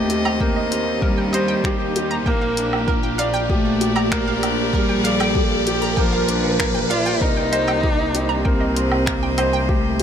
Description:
piano and strings electronica; 97 BPM; 4/4; straight; C dorian; A4 = 441 Hz
dark cello; melody; 0.0-10.0 s; F3 to F4; -23 LUFS; equal; digital delay
rich string quartet; sustained chords; 0.0-10.0 s; Bb2 to Eb5; -27 LUFS; equal; sidechain pumping
felt-muted upright piano; riff; 0.0-10.0 s; Bb3 to D5; -23 LUFS; equal; digital delay
bright studio double bass section; bass; 0.0-10.0 s; Bb1 to Eb2; -27 LUFS; equal; tube saturation, sidechain pumping
riser; sound effects; 0.3-7.2 s; -27 LUFS; equal
deep house drum kit; drums; 0.1-10.0 s; finger snaps, hi-hat, woodblock; -27 LUFS; right 1 dB; high-pass filter on perc, high-pass filter on hats, high-pass filter on snare, high-pass filter on room
analog pluck; arpeggios; 0.3-9.6 s; Bb4 to Bb5; -29 LUFS; right 4 dB; chorus, sidechain pumping, digital delay
electronic kick drum; drums; 0.4-9.8 s; -22 LUFS; equal
light reverb, small room ambience; -17 LUFS; side -8 dB against mid
0.0-7.2 A section; 7.2-10.0 B section
build-up 0.0-7.2; filter sweep on cello 0.0-7.2; riser 0.3-7.2; drop 7.2-10.0
0.0 Eb6; 2.3 Bb6; 7.2 Cm7

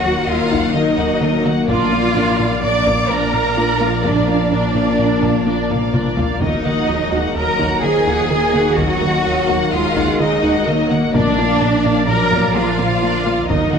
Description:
cinematic, hybrid orchestral and electronic film score; 127 BPM; 5/4; straight; Eb harmonic minor; A4 = 440 Hz
warm symphonic violin section; melody; 0.0-13.8 s; D5 to Gb5; -26 LUFS; left 5 dB
warm symphonic violin section; second line; 0.0-13.8 s; D5 to D6; -24 LUFS; left 2 dB
rich symphonic viola section; accompaniment; 0.0-13.8 s; Gb3 to D5; -25 LUFS; right 1 dB
analog drone; sustained chords; 0.0-13.8 s; D3 to Bb4; -26 LUFS; left 2 dB; chorus
mellow French horn section; sustained chords; 0.0-13.8 s; Eb3 to D4; -23 LUFS; left 5 dB
tight sequenced synth; arpeggios; 0.0-13.8 s; Eb3 to Bb4; -25 LUFS; left 1 dB
rubbery square bass; riff; 0.0-13.8 s; Eb2 to Bb3; -25 LUFS; right 2 dB
clear symphonic double bass section; bass; 0.0-13.8 s; Bb1 to Eb2; -25 LUFS; right 3 dB
pure sine sub bass; bass; 0.0-13.8 s; Eb1 to Bb1; -30 LUFS; left 1 dB
warm symphonic cello section; bass; 0.0-13.8 s; D4 to D5; -19 LUFS; right 3 dB
taiko ensemble; drums; 0.5-13.8 s; -26 LUFS; left 1 dB
wet concert hall reverb, RT60 1.9 s; small room ambience; -14 LUFS; side -6 dB against mid
0.0-13.8 A section
drum fill 5.7-6.4
0.0 Ebm; 1.7 Bb; 6.4 Ebm; 11.1 Bb

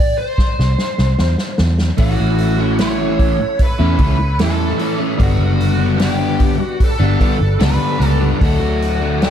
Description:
psychedelic rock; 75 BPM; 4/4; straight; A mixolydian; A4 = 440 Hz
dark smooth lead guitar; melody; 0.0-9.3 s; F#4 to D5; -22 LUFS; equal; wah, overdrive, analog delay
vintage muted picked electric bass; bass; 0.0-9.3 s; F#1 to E2; -16 LUFS; equal
vintage drum kit; drums; 0.4-9.3 s; hi-hat, kick drum, snare drum; -18 LUFS; equal
tonewheel organ; sustained chords; 2.0-9.3 s; G3 to F#5; -31 LUFS; right 3 dB; slow rotary speaker, chorus vibrato
overdriven semi-hollow guitar; riff; 2.0-9.3 s; G2 to E4; -18 LUFS; left 1 dB; flanger, analog delay
studio reverb; echo-heavy mix; -13 LUFS; side -9 dB against mid
0.0-9.3 A section
drum fill 0.4-2.0
0.0 C; 2.0 A6; 5.2 Gmaj7; 8.4 Dmaj7

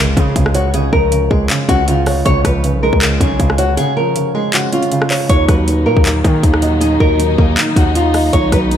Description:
hip hop, trap; 158 BPM; 4/4; half-time; Eb minor; A4 = 440 Hz
felt-muted upright piano; accompaniment; 0.0-8.8 s; Db3 to Eb5; -17 LUFS; right 2 dB; low-pass filter
distorted 808-style bass; bass; 0.0-8.8 s; Cb2 to Eb3; -17 LUFS; equal; distortion
impact; sound effects; 0.1-0.7 s; barely audible
nylon-string guitar; melody; 0.2-8.8 s; F4 to Db5; -18 LUFS; left 1 dB; low-pass filter
trap drum kit; drums; 0.2-8.8 s; handclaps, hi-hat, kick drum, rim click; -16 LUFS; equal
dark symphonic string section; sustained chords; 5.3-8.8 s; Bb2 to Eb4; -22 LUFS; left 3 dB
moderate plate reverb, RT60 2.0 s; dreamy mix soaked in reverb; -11 LUFS; side -9 dB against mid
0.0-8.8 A section
impact 0.0-0.7; break 3.8-5.3
0.0 Db; 5.3 Ebm

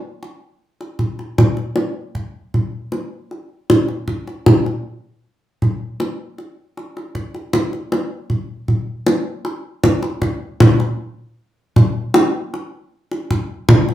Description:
gamelan; 78 BPM; 4/4; straight
kendang; percussion; 0.2-13.9 s; -15 LUFS; equal
wet studio reverb, RT60 0.6 s; band playing live in one room; -16 LUFS; side -13 dB against mid
0.0-13.9 A section

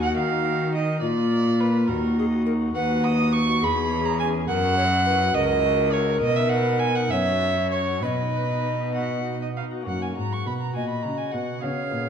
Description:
classical, baroque-style sonata movement with continuo; 69 BPM (dotted quarters); 6/8; rubato; B major; A4 = 439 Hz
mellow hollow tenor recorder; melody; 0.0-12.1 s; E#4 to D#5; -28 LUFS; left 7 dB
warm violin; second line; 0.0-12.1 s; A#4 to D#6; -25 LUFS; right 4 dB
pipe organ, cornet; accompaniment; 0.0-12.1 s; C#2 to E5; -29 LUFS; equal
rich cello; bass; 0.0-12.1 s; C#2 to D#3; -25 LUFS; right 1 dB
wet recital hall reverb, RT60 1.5 s; dark, warm production; -21 LUFS; side -8 dB against mid
0.0-9.9 A section; 9.9-12.1 A section
0.0 D#m; 1.0 A#; 1.9 D#m; 3.6 C#m7/E; 4.5 F#7; 6.2 B; 7.1 F#5; 8.0 B; 9.9 F#

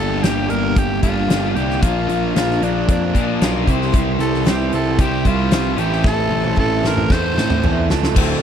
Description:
classic rock; 114 BPM; 4/4; straight; A4 = 440 Hz
raspy tenor saxophone; melody; 0.0-8.4 s; C4 to C5; -24 LUFS; left 1 dB; slapback echo
crunchy overdriven guitar; riff; 0.0-8.4 s; D2 to C5; -23 LUFS; left 16 dB
sludgy distorted guitar; riff; 0.0-8.4 s; D2 to C5; -23 LUFS; right 15 dB; overdrive
fuzz picked electric bass; bass; 0.0-8.3 s; D1 to Bb2; -21 LUFS; equal; overdrive
huge arena drum kit; drums; 0.2-8.3 s; crash cymbal, hi-hat, kick drum, snare drum, toms; -20 LUFS; equal
picked twelve-string acoustic guitar; accompaniment; 3.9-8.4 s; A2 to F4; -28 LUFS; right 8 dB
tonewheel organ; sustained chords; 8.1-8.4 s; A3 to A4; -28 LUFS; left 3 dB; slow rotary speaker, overdrive
little or no reverb; dry, close 1970s-style studio recording; -15 LUFS; side -8 dB against mid
0.0-8.2 A section
drum fill 6.0-8.2
0.0 Gm; 1.8 Bb; 3.7 C; 5.8 Am

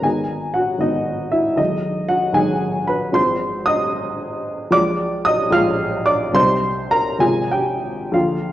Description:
classical, romantic character piece for solo piano; 61-80 BPM (dotted quarters); 6/8; rubato; A4 = 436 Hz
warm upright piano; solo; 0.0-8.5 s; G#1 to F6; -17 LUFS; equal
wet recital hall reverb, RT60 1.6 s; worn, warbling old tape, cassette tape, warbly pitch drift; -17 LUFS; side -13 dB against mid
0.0-8.5 A section
0.0 G#m; 1.6 G#m/B; 3.2 Ab6; 4.7 Bb7; 6.4 Cm; 7.2 Fm/Ab

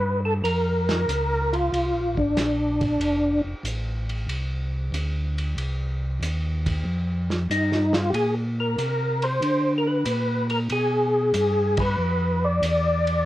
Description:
soul jazz organ trio; 94 BPM; 4/4; swing 68% on 8ths; A4 = 440 Hz
percussive tonewheel organ; melody; 0.0-3.4, 7.5-13.3 s; D4 to D5; -23 LUFS; left 1 dB; slow rotary speaker, chorus vibrato
mellow tonewheel organ; bass; 0.0-13.2 s; F1 to D3; -25 LUFS; equal; slow rotary speaker
warm soul drum kit; drums; 0.4-13.2 s; hi-hat, kick drum, ride cymbal, snare drum; -32 LUFS; right 1 dB
light reverb; worn, warbling old tape, cassette tape, warbly pitch drift; -21 LUFS; side -15 dB against mid
0.0-13.3 A section
band accent 11.7-12.0
0.4 Bb9; 3.0 F6; 5.6 Cm; 6.9 Fsus2; 8.1 Bbadd9; 10.7 Bdim7

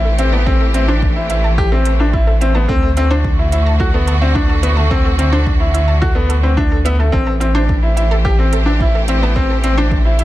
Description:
piano and strings electronica; 108 BPM; 4/4; straight; A dorian; A4 = 442 Hz
clear studio string section; sustained chords; 0.0-10.2 s; D3 to C5; -22 LUFS; equal; sidechain pumping
analog pluck; arpeggios; 0.0-10.2 s; E4 to A5; -26 LUFS; right 4 dB; chorus, sidechain pumping, tape echo
bright upright piano; riff; 0.0-10.2 s; A3 to G4; -18 LUFS; left 1 dB; tape echo
round analog bass; bass; 0.0-10.2 s; A1 to D2; -15 LUFS; equal; sidechain pumping
electronic hi-hat; drums; 0.2-10.2 s; -30 LUFS; right 4 dB
electronic kick drum; drums; 0.5-10.0 s; -18 LUFS; equal
small room ambience; -12 LUFS; side -15 dB against mid
0.0-10.2 A section
0.0 Am7; 2.7 D7; 7.1 Am7

